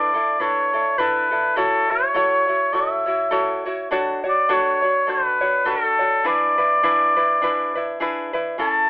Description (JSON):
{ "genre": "Hawaiian", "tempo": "103 BPM", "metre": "4/4", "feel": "swing 58% on 8ths", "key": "unclear", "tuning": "A4 = 444 Hz", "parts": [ { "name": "warm oboe", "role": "melody", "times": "0.0-8.9 s", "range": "A4 to A5", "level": "-18 LUFS", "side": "equal", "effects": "none" }, { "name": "tenor ukulele", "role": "accompaniment", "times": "0.0-8.9 s", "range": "C#4 to C#5", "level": "-22 LUFS", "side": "equal", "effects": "none" } ], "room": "light reverb", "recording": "telephone sound", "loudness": "-17 LUFS", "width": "side -20 dB against mid", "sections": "0.0-8.9 A section", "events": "none", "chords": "0.0 E7sus4; 1.6 A6; 3.9 Dmaj7; 6.2 E7" }